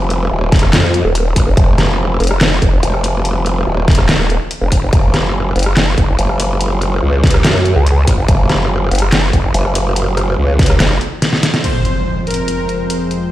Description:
heavy wobble dubstep; 143 BPM; 4/4; half-time; A4 = 440 Hz
growl bass; bass; 0.0-10.8 s; Eb1 to Gb2; -14 LUFS; equal; chorus, overdrive
dubstep drum kit; drums; 0.1-13.2 s; crash cymbal, handclaps, hi-hat, rim click, snare drum; -16 LUFS; equal
electronic kick drum; drums; 0.5-10.7 s; -13 LUFS; equal
vowel-sweep wobble bass; bass; 1.0-11.0 s; Eb1 to Db2; -14 LUFS; equal; chorus, overdrive
soft supersaw; melody; 11.6-13.0 s; Bb4 to C5; -21 LUFS; equal; tape echo
lush unison pad; sustained chords; 11.6-13.3 s; F2 to C5; -20 LUFS; left 1 dB; chorus, sidechain pumping
impact; sound effects; 11.6-13.3 s; -20 LUFS; equal
digital ambience; played on a big sound system in a bare room, stone room reverb; -11 LUFS; side -14 dB against mid
0.0-11.6 A section; 11.6-13.3 B section
drop 0.0-11.6; drum fill 11.2-11.6; band accent 11.5; impact 11.6-13.3
0.0 N.C.; 4.9 Gb5; 11.6 Fm

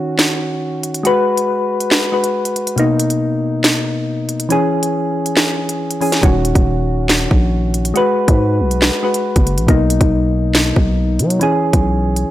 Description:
hip hop, drill; 139 BPM; 4/4; half-time; G# minor; A4 = 442 Hz
soft electric-piano-like synth keys; accompaniment; 0.0-12.3 s; B2 to B4; -16 LUFS; left 1 dB; chorus, low-pass filter
drill drum kit; drums; 0.2-12.3 s; handclaps, hi-hat, kick drum, snare drum; -15 LUFS; equal
growling 808-style bass; bass; 6.2-12.3 s; D#1 to F#3; -17 LUFS; equal
digital ambience; dry, gritty hardware recording, transformer saturation; -13 LUFS; side -14 dB against mid
0.0-12.3 A section
break 0.0-6.2
0.0 D#m7; 1.1 G#m7; 2.8 Bmaj7; 4.5 E6; 6.2 D#m7; 8.0 G#m7; 9.7 Bmaj7; 11.4 E6

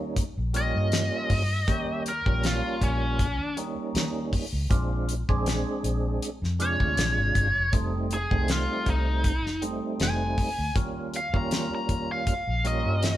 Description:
straight-eighth soul blues; 79 BPM; 4/4; swing 54% on 16ths; A4 = 441 Hz
percussive tonewheel organ; accompaniment; 0.0-13.2 s; C3 to Ab4; -31 LUFS; right 2 dB; overdrive, chorus vibrato, slow rotary speaker
vintage muted fingered electric bass; bass; 0.0-13.2 s; F1 to G2; -29 LUFS; equal
damped 70s drum kit; drums; 0.2-13.2 s; hi-hat, kick drum, snare drum; -28 LUFS; equal
biting lead guitar; melody; 0.6-13.2 s; Db4 to Bb5; -28 LUFS; equal; overdrive
moderate stone room reverb, RT60 1.1 s; band playing live in one room; -24 LUFS; side -13 dB against mid
0.0-13.2 A section
0.0 Eb7; 4.7 Bb7; 7.7 F7; 10.8 Eb7

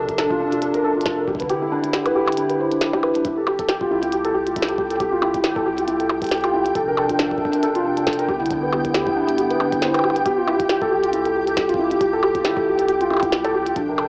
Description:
IDM; 137 BPM; 4/4; swing 56% on 16ths; F lydian; A4 = 440 Hz
hollow soft pad; sustained chords; 0.0-14.1 s; C3 to G4; -25 LUFS; equal; ensemble chorus, cassette tape
felt-muted upright piano; arpeggios; 0.0-14.1 s; D4 to C5; -20 LUFS; equal; cassette tape, analog delay
warm sub bass; bass; 0.0-14.1 s; F1 to D2; -40 LUFS; equal; tube saturation
electronic kick drum; drums; 0.1-13.9 s; -33 LUFS; equal; cassette tape
glitchy drum kit; drums; 0.1-14.1 s; hi-hat, percussion blips, snare drum; -25 LUFS; equal; cassette tape
flickering grainy texture; texture; 3.5-14.1 s; G5; -27 LUFS; equal; built-in reverb, cassette tape
moderate spring reverb, RT60 2.0 s; home recording on cassette, small speaker sound; -17 LUFS; side -30 dB against mid
0.0-14.1 A section
0.0 Bbmaj9; 1.3 Cmaj9; 3.2 Fmaj9; 6.8 Bbmaj9; 8.3 Cmaj9; 10.3 Fmaj9

